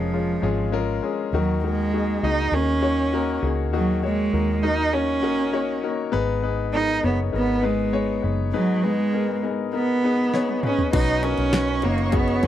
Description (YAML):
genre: piano-driven pop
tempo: 100 BPM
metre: 4/4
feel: straight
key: unclear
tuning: A4 = 440 Hz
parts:
  - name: rich cello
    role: melody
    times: 0.0-12.5 s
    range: E#3 to D#4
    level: -23 LUFS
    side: right 3 dB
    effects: none
  - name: clear concert grand piano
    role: accompaniment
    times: 0.0-12.5 s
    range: G#2 to C#5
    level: -25 LUFS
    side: left 7 dB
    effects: none
  - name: vintage muted fingered electric bass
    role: bass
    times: 0.0-12.5 s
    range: E#1 to D#2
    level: -26 LUFS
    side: equal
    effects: none
  - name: pop drum kit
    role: drums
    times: 10.3-12.5 s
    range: crash cymbal, hi-hat, kick drum, snare drum, toms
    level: -24 LUFS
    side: equal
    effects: none
  - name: dark studio string section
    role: sustained chords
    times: 10.9-12.5 s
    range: C#5 to C#6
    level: -33 LUFS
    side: right 4 dB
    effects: none
room: light reverb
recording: dry, close 1970s-style studio recording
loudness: -20 LUFS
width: side -11 dB against mid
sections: 0.0-10.9 A section; 10.9-12.5 B section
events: drum fill 10.3-10.9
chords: 0.0 C#/E#; 1.3 D#m; 6.1 Badd9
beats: 0.13 0.73 | 1.33 1.93 2.53 3.13 | 3.73 4.33 4.94 5.54 | 6.14 6.74 7.34 7.94 | 8.54 9.14 9.74 10.34 | 10.94 11.54 12.14